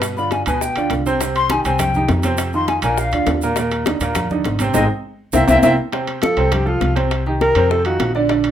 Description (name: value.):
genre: Afro-Cuban jazz.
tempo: 203 BPM.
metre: 4/4.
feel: straight.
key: unclear.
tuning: A4 = 441 Hz.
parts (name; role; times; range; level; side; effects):
clear baby grand piano; accompaniment; 0.0-8.5 s; Bb2 to D5; -20 LUFS; right 3 dB; none.
upright bass; bass; 0.0-8.5 s; Ab1 to G2; -22 LUFS; equal; none.
bongos; percussion; 0.0-8.5 s; none; -27 LUFS; left 8 dB; none.
congas; percussion; 0.0-8.5 s; none; -24 LUFS; left 1 dB; none.
maracas; percussion; 0.0-5.7 s; none; -31 LUFS; right 5 dB; none.
timbales; percussion; 0.0-8.5 s; none; -28 LUFS; right 4 dB; none.
breathy jazz flute; second line; 0.2-5.7 s; Eb5 to C6; -19 LUFS; left 3 dB; none.
mellow alto saxophone; melody; 6.2-8.2 s; D4 to Bb4; -18 LUFS; equal; none.
room: moderate club reverb, RT60 0.6 s.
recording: minimal, uncompressed stereo recording.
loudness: -15 LUFS.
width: side -10 dB against mid.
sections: 0.0-5.9 A section; 5.9-8.5 A section.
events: flute solo 0.0-5.9; band accent 4.8-5.9; drum fill 5.2-5.9; alto saxophone solo 5.9-8.5.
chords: 0.0 G7; 1.2 Cm; 2.4 F5; 3.0 Bb; 3.6 Eb5; 4.8 Ab; 5.3 C7; 5.9 F; 7.1 Cm7; 7.7 F5.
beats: | 0.03 0.32 0.62 0.91 | 1.21 1.50 1.80 2.10 | 2.39 2.69 2.98 3.28 | 3.57 3.87 4.16 4.46 | 4.75 5.05 5.34 5.64 | 5.93 6.23 6.52 6.82 | 7.11 7.41 7.70 8.00 | 8.29.